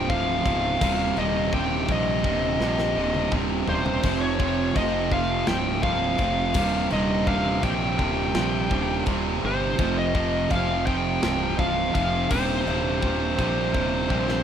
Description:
heavy metal; 84 BPM; 4/4; straight; C minor; A4 = 440 Hz
high-gain lead guitar; melody; 0.0-14.4 s; C5 to G5; -27 LUFS; left 2 dB; distortion
distorted electric guitar; riff; 0.0-14.4 s; C2 to F3; -27 LUFS; right 13 dB; overdrive
fuzz guitar; riff; 0.0-14.4 s; C2 to F3; -33 LUFS; equal
scooped high-gain guitar; riff; 0.0-14.4 s; C2 to F3; -30 LUFS; left 14 dB; distortion
fuzz fingered electric bass; bass; 0.0-14.4 s; C1 to Bb1; -28 LUFS; left 1 dB; overdrive
tight metal drum kit; drums; 0.1-14.4 s; china cymbal, crash cymbal, kick drum, snare drum, toms; -30 LUFS; left 1 dB
little or no reverb; rough home demo mix; -21 LUFS; side -8 dB against mid
0.0-14.4 A section
drum fill 2.6-4.0, 14.1-14.4
0.0 F5; 0.8 Cm/Eb; 4.0 F5; 6.6 Cm/Eb; 9.8 F5; 12.3 Cm/Eb

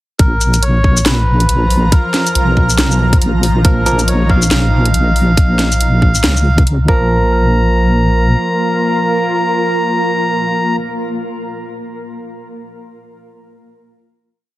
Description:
deep dubstep; 139 BPM; 4/4; swing 59% on 16ths, half-time; Bb phrygian; A4 = 440 Hz
melodica; melody; 0.2-10.8 s; Bb4 to Bb5; -18 LUFS; equal; dub echo
granular cloud pad; sustained chords; 1.2-10.8 s; F3 to Bb5; -21 LUFS; equal; built-in reverb
deep soft wobble bass; bass; 0.2-8.4 s; Bb1 to Db2; -13 LUFS; equal; chorus
electronic kick drum; drums; 0.2-7.0 s; -11 LUFS; equal; overdrive
garage drum kit; drums; 0.2-6.8 s; hi-hat, shaker, snare drum; -16 LUFS; equal; overdrive
barky tine electric piano; stabs; 3.6-4.0, 6.9-10.8 s; F3 to Bb4; -19 LUFS; right 2 dB; dub echo
light reverb; heavily compressed radio sound, multiband compression; -10 LUFS; side -16 dB against mid
0.2-7.1 drop; 7.1-10.6 final hit
drop 0.2-7.1
0.2 Bb5

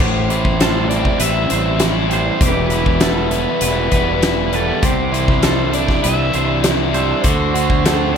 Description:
rock, shoegaze and dream pop; 100 BPM; 4/4; straight; A4 = 439 Hz
reedy FM lead; melody; 0.0-8.2 s; A4 to E5; -23 LUFS; equal; chorus, slapback echo
twangy electric guitar; arpeggios; 0.0-8.2 s; F#4 to C5; -27 LUFS; right 5 dB; lush chorus, slapback echo
biting overdriven guitar; riff; 0.0-8.2 s; A2 to E4; -21 LUFS; left 13 dB; wide subtle chorus
crunchy overdriven guitar; riff; 0.0-8.2 s; E2 to F#4; -21 LUFS; right 12 dB; reverse reverb
fuzz fingered electric bass; bass; 0.0-8.2 s; E1 to D2; -21 LUFS; equal; overdrive
huge arena drum kit; drums; 0.0-8.0 s; hi-hat, kick drum, snare drum; -18 LUFS; equal
light reverb; -14 LUFS; side -7 dB against mid
0.0-8.2 A section
0.0 Am7; 2.4 Em; 4.8 Cadd9; 7.2 D7

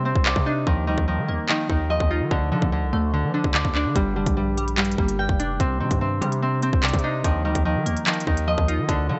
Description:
hip hop, drill; 146 BPM; 4/4; half-time; A4 = 440 Hz
glassy wavetable pluck; accompaniment; 0.0-9.2 s; G2 to D5; -30 LUFS; equal; chorus, low-pass filter
Celtic harp; arpeggios; 0.0-9.2 s; D3 to G5; -28 LUFS; equal; low-pass filter, delay
distorted 808-style bass; bass; 0.0-9.2 s; F1 to F3; -28 LUFS; equal; distortion
downlifter; sound effects; 0.0-0.7 s; barely audible
drill drum kit; drums; 0.2-9.0 s; handclaps, hi-hat, kick drum; -26 LUFS; equal
digital ambience; nothing above 7.9 kHz; -23 LUFS; mono
0.0-9.2 A section
break 0.0-4.0
0.0 Cmadd9; 0.7 Ebadd9; 2.3 Dm; 4.0 Gm; 5.6 Cmadd9; 7.2 Ebadd9

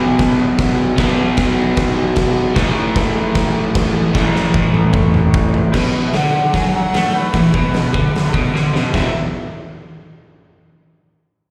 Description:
garage rock duo or trio; 151 BPM; 4/4; straight; A4 = 443 Hz
crunchy overdriven guitar; riff; 0.0-9.1 s; E2 to B3; -18 LUFS; equal
oversized low-tuned drum kit; drums; 0.2-9.0 s; crash cymbal, hi-hat, kick drum, snare drum, toms; -20 LUFS; equal
overdriven slide guitar; melody; 5.7-9.1 s; B4 to G#5; -24 LUFS; equal; slapback echo, tape echo
light reverb, small room ambience; live gig heard through the venue's PA, recital hall reverb; -16 LUFS; mono
0.0-5.7 A section; 5.7-8.9 B section; 8.9-10.5 C section
drum fill 4.2-5.7, 8.5-8.9
0.0 B5; 2.6 A5; 5.7 B5; 8.9 E5

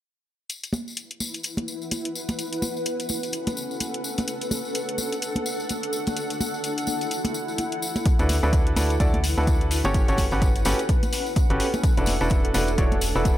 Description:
piano house; 127 BPM; 4/4; swing 59% on 16ths; A4 = 440 Hz
electronic hi-hat; drums; 0.5-13.4 s; -31 LUFS; left 2 dB
tambourine and congas; percussion; 0.5-13.4 s; -31 LUFS; equal
granular cloud pad; texture; 1.3-13.4 s; C#4 to F#5; -29 LUFS; equal; built-in reverb, sidechain pumping
electronic kick drum; drums; 8.1-13.4 s; -22 LUFS; equal
clear grand piano; riff; 8.2-13.4 s; C#4 to D5; -26 LUFS; equal; sidechain pumping, digital delay
organ-like FM bass; bass; 8.2-13.4 s; E1 to D2; -25 LUFS; equal; sidechain pumping
light reverb; -22 LUFS; side -13 dB against mid
0.5-13.4 A section
0.5 Esus2; 2.4 F#madd11/C#; 4.3 D; 6.2 F#m7; 8.1 D69; 9.9 Gmaj9#11; 11.8 E9sus4

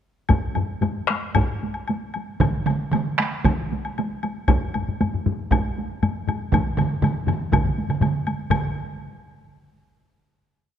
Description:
japanese traditional, taiko drum ensemble; 113-128 BPM; 4/4; straight
taiko ensemble; percussion; 0.3-8.7 s; -28 LUFS; right 1 dB
taiko ensemble; percussion; 0.3-9.0 s; -26 LUFS; left 4 dB
taiko ensemble; percussion; 0.3-8.7 s; -24 LUFS; right 1 dB
woodblock; percussion; 0.3-8.7 s; -30 LUFS; left 5 dB
taiko ensemble; percussion; 2.4-9.0 s; -24 LUFS; right 4 dB
wet scoring stage reverb, RT60 1.9 s; close, detailed microphones; -21 LUFS; side -9 dB against mid
0.3-8.5 A section; 8.5-10.4 final hit
speeding up 0.3-10.4

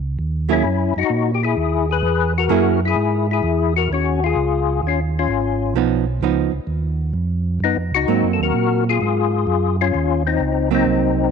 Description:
jazz; 129 BPM; 4/4; swing 67% on 8ths; A4 = 440 Hz
mellow tonewheel organ; bass; 0.0-11.3 s; Ab1 to Bb2; -21 LUFS; right 2 dB; overdrive, chorus vibrato, slow rotary speaker
percussive tonewheel organ; melody; 0.5-11.3 s; Cb4 to Cb5; -19 LUFS; left 10 dB; slow rotary speaker, chorus vibrato
archtop guitar, miked and amplified; accompaniment; 0.5-2.8, 5.8-11.3 s; F3 to Ab4; -21 LUFS; right 16 dB
light reverb, digital ambience; 1960s-style stereo with parts hard left and right; -16 LUFS; side -6 dB against mid
0.0-11.3 A section
0.0 Dbsus2; 0.6 Gb9; 4.4 Db9; 8.1 Ab9

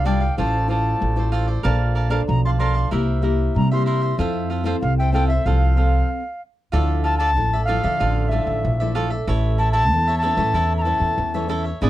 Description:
samba; 94 BPM; 4/4; straight; F major, D minor from 6.7 s; A4 = 440 Hz
reedy silver concert flute; melody; 0.0-11.5 s; E5 to C6; -23 LUFS; left 1 dB
cavaquinho; accompaniment; 0.0-11.9 s; D4 to A5; -28 LUFS; right 3 dB
nylon-string guitar; accompaniment; 0.0-11.9 s; G#2 to C5; -26 LUFS; left 2 dB
upright bass; bass; 0.0-11.9 s; G#1 to D3; -20 LUFS; equal
little or no reverb; dry, close 1970s-style studio recording; -18 LUFS; side -14 dB against mid
0.0-6.7 A section; 6.7-11.9 B section
stop 6.1-6.7
0.4 Dm9/A; 1.6 Bbmaj9; 2.9 C7; 4.2 Fmaj7; 6.7 Dmadd9; 9.3 A

